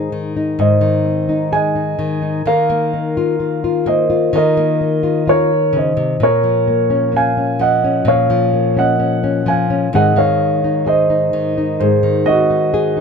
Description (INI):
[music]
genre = acoustic folk-pop ballad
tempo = 64 BPM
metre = 4/4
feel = straight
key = unclear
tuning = A4 = 440 Hz
[part]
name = dark concert grand piano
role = melody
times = 0.0-13.0 s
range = Gb4 to Ab5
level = -15 LUFS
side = right 3 dB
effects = none
[part]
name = nylon-string guitar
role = accompaniment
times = 0.0-13.0 s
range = Ab2 to Ab4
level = -17 LUFS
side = left 4 dB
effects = none
[sound]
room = light reverb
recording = close, detailed microphones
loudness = -13 LUFS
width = side -6 dB against mid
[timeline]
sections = 0.0-13.0 A section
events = none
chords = 0.0 Ab; 2.5 Ebsus2; 6.2 Bbm; 9.9 Ab